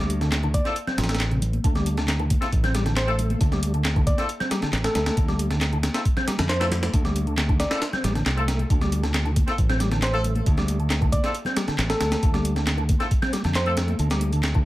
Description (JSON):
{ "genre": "breakbeat, breaks", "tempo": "136 BPM", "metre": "4/4", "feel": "straight", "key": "D minor", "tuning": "A4 = 441 Hz", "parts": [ { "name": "percussive tonewheel organ", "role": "riff", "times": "0.0-14.6 s", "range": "C3 to C4", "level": "-28 LUFS", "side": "equal", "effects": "chorus vibrato, fast rotary speaker, tube saturation, digital delay" }, { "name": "modern bright fingered electric bass", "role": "bass", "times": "0.0-14.7 s", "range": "A1 to F2", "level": "-24 LUFS", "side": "equal", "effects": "none" }, { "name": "breakbeat sampler-style drum kit", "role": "drums", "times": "0.1-14.7 s", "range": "hi-hat, kick drum, snare drum", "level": "-24 LUFS", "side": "equal", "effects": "none" }, { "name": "house drum kit", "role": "drums", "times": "0.1-14.6 s", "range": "handclaps, hi-hat", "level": "-33 LUFS", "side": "equal", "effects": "none" }, { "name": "bongos and congas", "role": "percussion", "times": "0.4-14.6 s", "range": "none", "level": "-35 LUFS", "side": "left 2 dB", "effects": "none" }, { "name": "soft struck synth lead", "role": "melody", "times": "0.5-13.7 s", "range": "A4 to D5", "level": "-30 LUFS", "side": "equal", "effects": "chorus, old record sound, vintage 12-bit sampler grit, digital delay" }, { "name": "clear horn section", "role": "stabs", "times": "0.7-13.7 s", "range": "C4 to A4", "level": "-31 LUFS", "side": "left 2 dB", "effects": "digital delay" } ], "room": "little or no reverb", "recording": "none", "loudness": "-20 LUFS", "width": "side -16 dB against mid", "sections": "0.0-14.7 A section", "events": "kick drops out 0.8-1.6", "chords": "0.0 Dm7" }